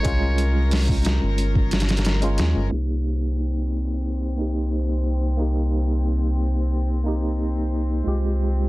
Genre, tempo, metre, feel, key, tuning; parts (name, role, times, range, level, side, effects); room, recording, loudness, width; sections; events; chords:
trip hop; 90 BPM; 4/4; straight; C phrygian; A4 = 440 Hz
trumpet with metal mute; melody; 0.0-1.0 s; Db5; -33 LUFS; equal; vintage 12-bit sampler grit, dub echo
tine electric piano; accompaniment; 0.0-8.7 s; Ab3 to G4; -27 LUFS; equal; fast stereo tremolo, tape echo
rich chamber string section; sustained chords; 0.0-8.7 s; C4 to Bb4; -35 LUFS; left 3 dB; vintage 12-bit sampler grit, low-pass filter
boom bap sampler-style drum kit; drums; 0.0-2.6 s; hi-hat, kick drum, snare drum; -23 LUFS; equal
round analog bass; bass; 0.1-8.7 s; G1 to Eb2; -22 LUFS; equal
downlifter; sound effects; 2.9-8.1 s; -48 LUFS; equal
little or no reverb; dense, heavily limited modern master, vinyl crackle, low-pass filter; -20 LUFS; side -19 dB against mid
0.0-2.7 A section; 2.7-8.7 B section
0.0 Db; 2.7 Cm7; 8.1 Fmadd9/C